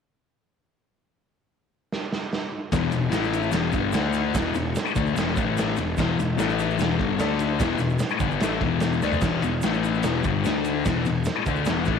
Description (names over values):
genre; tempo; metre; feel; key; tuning
garage rock duo or trio; 148 BPM; 4/4; straight; unclear; A4 = 441 Hz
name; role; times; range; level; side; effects
raw garage drum kit; drums; 1.9-12.0 s; crash cymbal, kick drum, ride cymbal, snare drum, toms; -27 LUFS; right 3 dB; none
thick fuzz guitar; riff; 2.7-12.0 s; E2 to D4; -24 LUFS; left 8 dB; distortion
fuzz picked electric bass; bass; 2.7-12.0 s; E1 to D2; -29 LUFS; right 2 dB; overdrive
egg shaker; percussion; 2.7-12.0 s; none; -44 LUFS; right 18 dB; none
room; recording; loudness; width
light reverb, small room ambience; 1960s-style stereo with parts hard left and right; -22 LUFS; side -6 dB against mid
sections
1.1-2.7 A section; 2.7-12.0 B section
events
drum fill 1.9-2.7, 9.0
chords
1.1 N.C.; 2.7 E5; 3.1 A5; 3.5 E5; 3.9 D5; 4.3 E5; 5.4 A5; 5.8 E5; 6.4 A5; 6.8 E5; 7.2 D5; 7.6 E5; 9.6 A5; 10.0 E5; 10.4 D5; 10.9 E5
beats
| 1.09 1.50 1.91 2.32 | 2.72 3.13 3.54 3.94 | 4.35 4.75 5.16 5.56 | 5.97 6.38 6.78 7.19 | 7.59 8.00 8.41 8.81 | 9.22 9.63 10.04 10.45 | 10.85 11.26 11.67